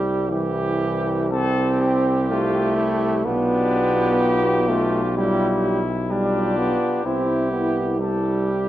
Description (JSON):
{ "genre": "classical, brass quintet", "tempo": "63 BPM", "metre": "4/4", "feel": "rubato", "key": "C major", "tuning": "A4 = 439 Hz", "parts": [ { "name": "mellow trumpet", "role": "second line", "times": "0.0-8.7 s", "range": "G4", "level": "-29 LUFS", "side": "right 4 dB", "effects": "none" }, { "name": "warm French horn", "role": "accompaniment", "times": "0.0-8.7 s", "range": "E4 to G4", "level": "-28 LUFS", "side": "left 2 dB", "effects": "none" }, { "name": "warm trombone", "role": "accompaniment", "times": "0.0-8.7 s", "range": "E3 to C4", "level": "-22 LUFS", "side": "right 1 dB", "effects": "none" }, { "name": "warm bass trombone", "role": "bass", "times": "0.0-8.7 s", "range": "B1 to C2", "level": "-24 LUFS", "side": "equal", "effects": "none" }, { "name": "mellow cornet", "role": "melody", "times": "1.3-8.7 s", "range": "D4 to A4", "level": "-28 LUFS", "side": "left 5 dB", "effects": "none" } ], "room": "wet recital hall reverb, RT60 1.5 s", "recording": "worn, warbling old tape, cassette tape, warbly pitch drift", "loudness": "-18 LUFS", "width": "side -13 dB against mid", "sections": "0.0-8.7 A section", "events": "none", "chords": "0.0 C; 3.3 G7/B; 7.1 C", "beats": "0.32 1.32 2.30 | 3.26 4.21 5.16 6.10 | 7.05 8.00" }